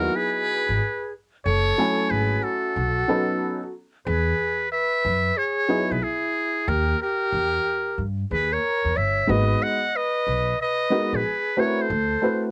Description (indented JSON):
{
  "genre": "hip hop, jazz-hop",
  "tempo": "92 BPM",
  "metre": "4/4",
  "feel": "swing 64% on 16ths",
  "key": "unclear",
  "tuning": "A4 = 439 Hz",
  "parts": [
    { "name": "trumpet with metal mute", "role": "melody", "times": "0.0-12.4 s", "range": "G#4 to F#5", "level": "-27 LUFS", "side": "equal", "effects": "none" },
    { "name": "breathy mellow silver concert flute", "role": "second line", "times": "0.0-12.4 s", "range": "E4 to D#5", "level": "-30 LUFS", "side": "equal", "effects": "cassette tape" },
    { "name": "dark upright piano", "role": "accompaniment", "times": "0.0-12.5 s", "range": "F#3 to G#5", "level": "-27 LUFS", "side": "equal", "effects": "cassette tape" },
    { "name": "upright bass", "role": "bass", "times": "0.0-12.1 s", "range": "F#1 to G2", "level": "-28 LUFS", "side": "equal", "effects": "none" }
  ],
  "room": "little or no reverb",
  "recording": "home recording on cassette",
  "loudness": "-23 LUFS",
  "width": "mono",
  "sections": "0.0-12.5 A section",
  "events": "none",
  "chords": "0.0 C#m11 (rootless); 1.5 F#m9; 2.8 B7; 4.1 Emaj9; 6.7 D#; 9.3 G#m9; 11.9 D13"
}